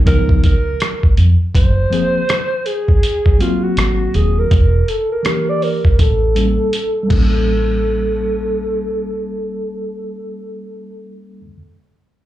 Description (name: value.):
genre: hip hop, jazz-hop.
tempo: 81 BPM.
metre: 4/4.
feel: swing 61% on 16ths.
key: unclear.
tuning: A4 = 440 Hz.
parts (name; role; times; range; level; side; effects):
mellow tine electric piano; accompaniment; 0.0-11.6 s; E3 to A#4; -22 LUFS; left 2 dB; medium stereo tremolo, low-pass filter, plate reverb, slapback echo.
breathy alto saxophone; melody; 0.1-11.2 s; E#4 to D5; -20 LUFS; right 1 dB; low-pass filter, plate reverb, slapback echo.
deep dub fingered electric bass; bass; 0.1-11.5 s; D#1 to E#2; -15 LUFS; equal; none.
boom bap sampler-style drum kit; drums; 0.1-7.3 s; crash cymbal, hi-hat, kick drum, rim click; -15 LUFS; equal; none.
room: light reverb.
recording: live gig heard through the venue's PA, club reverb.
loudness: -13 LUFS.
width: side -14 dB against mid.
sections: 0.0-7.5 A section; 7.5-10.4 B section.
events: filter sweep 0.0-7.5; drum fill 6.0-7.5.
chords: 0.1 C#13; 1.5 F#add9(#11); 4.5 Em7b5; 6.0 A7b9.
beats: 0.06 0.80 | 1.54 2.29 3.03 3.77 | 4.51 5.25 5.99 6.73 | 7.47 8.21 8.95 9.69.